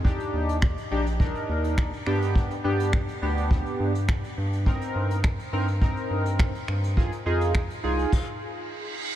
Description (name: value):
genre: dance-pop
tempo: 104 BPM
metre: 4/4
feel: straight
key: unclear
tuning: A4 = 442 Hz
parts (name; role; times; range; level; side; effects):
- chorused polysynth; accompaniment; 0.0-8.1 s; B3 to Bb4; -28 LUFS; right 1 dB; sidechain pumping
- round analog bass; bass; 0.0-8.1 s; Bb1 to G2; -27 LUFS; equal; sidechain pumping
- vintage brush drum kit; drums; 0.0-8.3 s; crash cymbal, finger snaps, hi-hat, kick drum; -26 LUFS; equal; none
- reverse cymbal; sound effects; 8.6-9.2 s; none; -34 LUFS; right 7 dB; none
room: light reverb, studio reverb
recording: none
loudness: -23 LUFS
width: side -12 dB against mid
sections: 0.0-9.2 A section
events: stop 8.1-9.2; reverse cymbal 8.6-9.2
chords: 0.0 Ebmaj7; 2.1 G; 4.7 Cm7/G; 7.0 Fm7